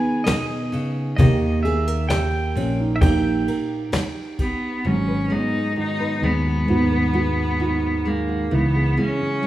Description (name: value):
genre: acoustic folk duo or small band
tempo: 66 BPM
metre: 4/4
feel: straight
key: G# minor from 4.9 s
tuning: A4 = 440 Hz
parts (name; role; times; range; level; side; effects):
- pedal steel guitar; second line; 0.0-4.3 s; D#5 to G#5; -29 LUFS; right 1 dB; none
- nylon-string guitar; accompaniment; 0.0-9.5 s; G#2 to B4; -26 LUFS; left 1 dB; none
- dark upright piano; arpeggios; 0.0-9.5 s; D#3 to G#4; -24 LUFS; right 3 dB; none
- soft brush drum kit; drums; 0.3-4.6 s; kick drum, ride cymbal, snare drum; -27 LUFS; equal; none
- cajon; percussion; 0.3-4.1 s; none; -18 LUFS; left 1 dB; none
- fingered electric bass; bass; 1.2-9.0 s; G#1 to D#2; -23 LUFS; equal; none
- bright cello; melody; 4.4-9.5 s; A#3 to D#4; -25 LUFS; left 1 dB; none
room: light reverb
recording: rough home demo mix, small room reverb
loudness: -19 LUFS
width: side -14 dB against mid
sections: 0.0-4.9 A section; 4.9-9.5 B section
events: pedal steel guitar solo 0.0-4.9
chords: 0.0 G#m; 1.2 D#; 4.9 G#m7; 8.5 C#m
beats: 0.28 | 1.19 2.10 3.02 3.94 | 4.85 5.77 6.68 7.60 | 8.52 9.44